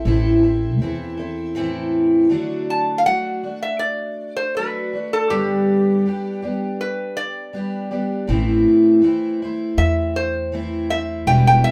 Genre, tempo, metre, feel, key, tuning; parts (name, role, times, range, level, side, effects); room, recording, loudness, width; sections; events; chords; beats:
acoustic folk duo or small band; 80 BPM; 4/4; straight; A4 = 442 Hz
metal-body resonator slide guitar; melody; 0.0-11.7 s; G4 to A5; -23 LUFS; equal
fingerpicked twelve-string acoustic guitar; accompaniment; 0.0-11.7 s; E2 to A4; -22 LUFS; equal
upright bass; bass; 0.1-2.3, 8.3-11.6 s; E1 to E2; -23 LUFS; equal
moderate studio reverb, RT60 0.5 s; -20 LUFS; mono
0.0-2.3 A section; 2.3-11.7 B section
resonator guitar played with a steel bar solo 2.3-11.7
0.0 Am; 2.3 D; 5.3 G; 8.3 Am
0.06 0.81 1.56 | 2.31 3.06 3.81 4.56 | 5.31 6.05 6.80 7.55 | 8.29 9.04 9.79 10.53 | 11.28